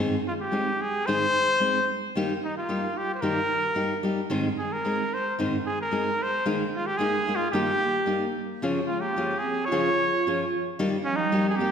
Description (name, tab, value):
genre	mexican folk, mariachi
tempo	111 BPM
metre	2/4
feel	rubato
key	Ab major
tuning	A4 = 439 Hz
part	nylon-string guitar	accompaniment	0.0-11.7 s	Ab2 to Ab4	-28 LUFS	left 1 dB	none
part	clear trumpet	melody	0.3-11.7 s	Db4 to Db5	-26 LUFS	equal	none
part	vibraphone with soft mallets	second line	7.5-11.7 s	F3 to F4	-30 LUFS	right 4 dB	none
room	wet scoring stage reverb, RT60 1.8 s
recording	heard from further back in the room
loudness	-23 LUFS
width	side -7 dB against mid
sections	0.0-11.7 A section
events	none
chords	0.0 Ab; 2.1 Eb; 4.3 Ab; 6.4 Ebsus4; 7.5 Eb; 8.6 Db; 10.8 Eb